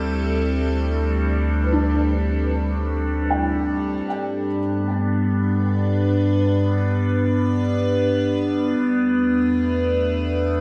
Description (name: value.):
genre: ambient.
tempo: free time.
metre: none.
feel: none.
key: G major.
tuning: A4 = 444 Hz.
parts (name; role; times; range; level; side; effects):
evolving wavetable pad; sustained chords; 0.0-10.6 s; G3 to B4; -23 LUFS; equal; phaser, built-in reverb.
warm sub bass; bass; 0.0-10.6 s; D2 to G2; -25 LUFS; equal; none.
bowed-like drone; drone; 0.0-4.1 s; G3 to D4; -37 LUFS; equal; built-in reverb, phaser.
felt-muted upright piano; arpeggios; 1.6-6.1 s; D4 to G5; -30 LUFS; equal; ensemble chorus, diffuse ambient delay.
room: moderate plate reverb, RT60 2.8 s.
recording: dreamy mix soaked in reverb, cassette tape.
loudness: -21 LUFS.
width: mono.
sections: 0.0-4.1 A section; 4.1-10.6 A section.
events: none.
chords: 0.0 D7sus4; 4.1 G; 8.8 E7sus4.